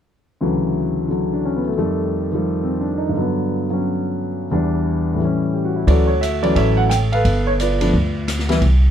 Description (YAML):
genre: jazz piano trio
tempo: 175 BPM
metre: 4/4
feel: swing 62% on 8ths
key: D major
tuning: A4 = 437 Hz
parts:
  - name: warm concert grand piano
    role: melody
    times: 0.4-8.6 s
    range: D2 to G5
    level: -18 LUFS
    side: equal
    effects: none
  - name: upright bass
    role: bass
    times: 5.9-8.9 s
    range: G1 to D2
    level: -17 LUFS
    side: equal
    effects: none
  - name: open jazz drum kit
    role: drums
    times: 5.9-8.7 s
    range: hi-hat, kick drum, ride cymbal, rim click, snare drum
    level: -25 LUFS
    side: left 1 dB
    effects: none
room: light reverb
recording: dark, warm production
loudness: -17 LUFS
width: side -9 dB against mid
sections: 0.4-5.9 A section; 5.9-8.9 B section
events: none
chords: 0.4 Dmaj9; 1.8 F9; 3.1 Gmaj7; 4.5 Em7; 5.2 A7; 5.9 Dmaj7; 7.2 G9